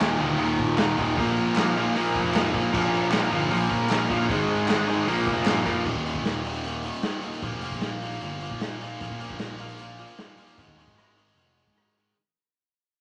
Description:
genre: indie rock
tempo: 153 BPM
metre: 4/4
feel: straight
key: Eb major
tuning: A4 = 440 Hz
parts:
  - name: overdriven tonewheel organ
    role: sustained chords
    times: 0.0-5.9 s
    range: Eb3 to G5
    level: -37 LUFS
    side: equal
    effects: none
  - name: distorted electric guitar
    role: riff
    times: 0.0-12.2 s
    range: Eb2 to Bb3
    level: -33 LUFS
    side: equal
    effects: overdrive
  - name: overdriven electric guitar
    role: riff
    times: 0.0-5.8 s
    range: Eb2 to Bb3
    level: -27 LUFS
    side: equal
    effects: none
  - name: fuzz picked electric bass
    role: bass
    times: 0.0-12.1 s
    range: Eb1 to Bb2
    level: -35 LUFS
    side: equal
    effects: overdrive
  - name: raw garage drum kit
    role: drums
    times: 0.0-12.1 s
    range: crash cymbal, hi-hat, kick drum, rim click, snare drum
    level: -32 LUFS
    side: equal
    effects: none
  - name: group handclap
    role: percussion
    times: 0.8-5.5 s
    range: none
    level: -36 LUFS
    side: equal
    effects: none
room: moderate large studio reverb, RT60 0.8 s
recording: none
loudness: -25 LUFS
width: mono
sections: 0.0-5.9 A section; 5.9-12.2 B section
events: fade-out 5.9-12.2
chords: 0.0 Ebmaj7; 1.2 Bbsus4; 2.7 Bbm; 4.3 Ab; 5.1 Bbadd9; 5.9 Eb5; 7.4 Bb5; 10.6 Ab5

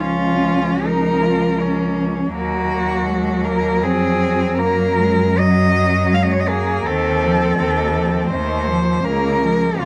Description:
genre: classical, lyrical piece for cello ensemble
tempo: 81 BPM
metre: 3/4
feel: rubato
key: Bb minor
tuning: A4 = 440 Hz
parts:
  - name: rich cello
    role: melody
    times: 0.0-9.9 s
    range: F4 to F5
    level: -22 LUFS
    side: equal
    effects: none
  - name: rich cello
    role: second line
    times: 0.0-9.9 s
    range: F3 to F4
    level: -25 LUFS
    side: equal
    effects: none
  - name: warm cello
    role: accompaniment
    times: 0.0-9.9 s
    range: Db3 to Gb3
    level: -24 LUFS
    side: equal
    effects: none
  - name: rich cello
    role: bass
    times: 0.0-9.9 s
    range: Db2 to Gb2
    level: -24 LUFS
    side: equal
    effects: none
room: light reverb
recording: none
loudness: -18 LUFS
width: mono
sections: 0.0-9.9 A section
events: none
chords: 0.0 Bbm/Db; 2.3 Ebm; 4.6 Ebm/Gb; 6.9 F7/Eb; 9.0 Bbm/Db

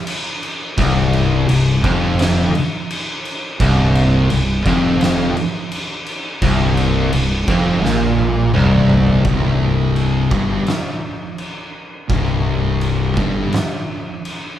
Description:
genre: stoner and doom metal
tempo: 85 BPM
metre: 4/4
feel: straight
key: unclear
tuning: A4 = 439 Hz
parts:
  - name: oversized low-tuned drum kit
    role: drums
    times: 0.1-14.4 s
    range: crash cymbal, kick drum, snare drum, toms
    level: -21 LUFS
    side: right 1 dB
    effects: none
  - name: distorted electric guitar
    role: riff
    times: 0.8-9.2 s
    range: C2 to Bb2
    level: -19 LUFS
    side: equal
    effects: overdrive
  - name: thick fuzz guitar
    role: riff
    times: 0.8-13.5 s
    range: C2 to Bb2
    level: -19 LUFS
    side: left 5 dB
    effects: distortion
  - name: thick fuzz guitar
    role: riff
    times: 0.8-13.5 s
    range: C2 to Bb2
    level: -22 LUFS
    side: right 5 dB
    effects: distortion
  - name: fuzz fingered electric bass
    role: bass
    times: 0.8-13.5 s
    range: C1 to Bb1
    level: -21 LUFS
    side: right 1 dB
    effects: overdrive
room: moderate large studio reverb, RT60 0.8 s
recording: band playing live in one room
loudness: -14 LUFS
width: side -11 dB against mid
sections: 0.0-9.3 A section; 9.3-14.6 B section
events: drum fill 7.8-9.3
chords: 0.0 C7sus4; 9.3 C5

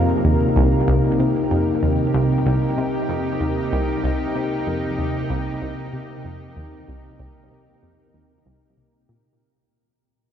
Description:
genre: ambient, sequencer-driven space music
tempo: 95 BPM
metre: 4/4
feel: straight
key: unclear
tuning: A4 = 441 Hz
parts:
  - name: lush unison pad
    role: sustained chords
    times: 0.0-9.4 s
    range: C3 to Bb4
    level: -22 LUFS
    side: right 1 dB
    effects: chorus
  - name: vibraphone with soft mallets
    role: arpeggios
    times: 0.0-9.4 s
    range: Eb4 to Bb4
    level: -26 LUFS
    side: left 4 dB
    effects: auto-pan, tape echo
  - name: analog pluck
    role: riff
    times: 0.0-9.2 s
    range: C2 to C3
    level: -22 LUFS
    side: equal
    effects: chorus, phaser, tape echo
room: wet huge ambient reverb, RT60 8.7 s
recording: in a vast, echoing space, nothing above 7.8 kHz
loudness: -18 LUFS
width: side -9 dB against mid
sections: 0.0-9.4 A section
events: fade-out on vibraphone 0.0-9.4; fade-out 0.0-9.4; filter sweep on synth arpeggio sound 0.0-9.4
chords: 0.0 Cm7

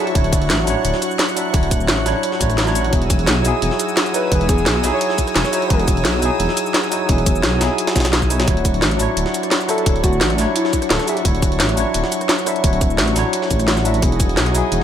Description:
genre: liquid drum and bass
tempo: 173 BPM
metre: 4/4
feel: straight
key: D major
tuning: A4 = 438 Hz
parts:
  - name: breathy flute-like synth lead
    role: melody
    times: 0.0-0.1, 4.1-5.8, 9.7-11.2 s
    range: E4 to C#5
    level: -24 LUFS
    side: equal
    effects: chorus, ping-pong delay
  - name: barky tine electric piano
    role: accompaniment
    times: 0.0-14.8 s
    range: F#3 to E5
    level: -21 LUFS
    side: equal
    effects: fast stereo tremolo, digital delay
  - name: lush unison pad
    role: sustained chords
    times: 0.0-14.8 s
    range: D4 to F#6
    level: -26 LUFS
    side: equal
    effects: chorus, sidechain pumping
  - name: jungle sampler-style drum kit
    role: drums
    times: 0.1-14.8 s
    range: hi-hat, snare drum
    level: -25 LUFS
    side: equal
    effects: high-pass filter on hats, high-pass filter on snare, high-pass filter on room
  - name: dark detuned saw bass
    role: bass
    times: 0.2-14.8 s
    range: D1 to B1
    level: -20 LUFS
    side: equal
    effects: none
  - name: drum and bass drum kit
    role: drums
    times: 0.2-14.8 s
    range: cabasa, hi-hat, rim click, snare drum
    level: -21 LUFS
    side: equal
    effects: none
  - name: electronic kick drum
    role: drums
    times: 0.2-14.3 s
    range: none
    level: -18 LUFS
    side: equal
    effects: none
room: light reverb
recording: none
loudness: -15 LUFS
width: side -9 dB against mid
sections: 0.0-8.5 A section; 8.5-14.8 A section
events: drop 0.0-8.5, 8.5-14.8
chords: 0.0 Dmaj9; 2.9 Emaj9; 8.5 Dmaj9; 14.0 Emaj9

